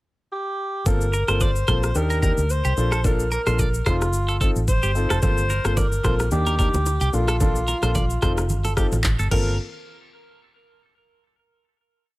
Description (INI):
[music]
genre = afrobeats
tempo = 110 BPM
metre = 4/4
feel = swing 55% on 16ths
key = G minor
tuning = A4 = 440 Hz
[part]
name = breathy alto saxophone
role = melody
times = 0.3-9.6 s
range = F4 to C5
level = -27 LUFS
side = equal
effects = none
[part]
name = warm grand piano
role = accompaniment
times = 0.9-9.5 s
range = Bb3 to A4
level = -29 LUFS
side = left 3 dB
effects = none
[part]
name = vintage muted fingered electric bass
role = bass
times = 0.9-9.6 s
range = F1 to Eb2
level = -23 LUFS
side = equal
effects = none
[part]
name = afro-pop drum kit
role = drums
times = 0.9-9.5 s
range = crash cymbal, handclaps, kick drum, rim click, shaker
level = -24 LUFS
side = equal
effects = none
[part]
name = clean electric guitar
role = riff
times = 1.1-9.6 s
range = G4 to D5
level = -29 LUFS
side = right 2 dB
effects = phaser
[part]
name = congas and bongos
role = percussion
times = 5.2-9.6 s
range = none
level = -33 LUFS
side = right 2 dB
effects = none
[sound]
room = little or no reverb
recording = none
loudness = -19 LUFS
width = side -19 dB against mid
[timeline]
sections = 0.0-0.9 pickup bar; 0.9-9.6 verse; 9.6-11.8 final hit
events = none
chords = 0.0 N.C.; 0.9 Gm11; 2.0 Ebmaj7; 2.8 Bbmaj7; 3.9 F7; 5.2 Gm11; 6.3 Ebmaj7; 7.1 Bbmaj7; 8.2 F7; 9.3 Gm11; 9.6 N.C.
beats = 0.32 | 0.86 1.41 1.95 2.50 | 3.04 3.59 4.13 4.68 | 5.22 5.77 6.32 6.86 | 7.41 7.95 8.50 9.04